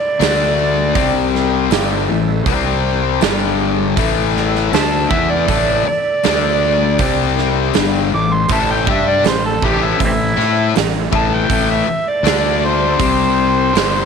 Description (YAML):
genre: blues rock power trio and southern rock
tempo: 80 BPM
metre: 4/4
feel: straight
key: A minor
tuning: A4 = 440 Hz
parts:
  - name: overdriven harmonica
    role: melody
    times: 0.0-14.1 s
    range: G3 to D6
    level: -18 LUFS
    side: right 2 dB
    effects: slapback echo
  - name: overdriven tonewheel organ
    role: sustained chords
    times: 0.0-14.1 s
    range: G3 to E5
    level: -29 LUFS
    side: right 11 dB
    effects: chorus vibrato, slow rotary speaker
  - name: fuzz guitar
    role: riff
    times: 0.2-14.1 s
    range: G2 to A4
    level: -17 LUFS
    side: left 13 dB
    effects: distortion
  - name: fuzz fingered electric bass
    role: bass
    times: 0.2-14.1 s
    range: G1 to A2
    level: -20 LUFS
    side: right 1 dB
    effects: overdrive
  - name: big rock drum kit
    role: drums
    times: 0.2-13.9 s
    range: hi-hat, kick drum, snare drum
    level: -20 LUFS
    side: right 6 dB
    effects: none
room: light reverb, small room ambience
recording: 1960s-style stereo with parts hard left and right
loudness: -13 LUFS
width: side -6 dB against mid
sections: 0.0-14.1 A section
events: harmonica solo 0.0-14.1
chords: 0.2 D5; 1.0 C5; 1.7 Am; 2.5 C5; 3.2 G5; 4.0 A5; 6.2 D5; 7.0 C5; 7.8 Am; 12.2 D5; 13.0 C5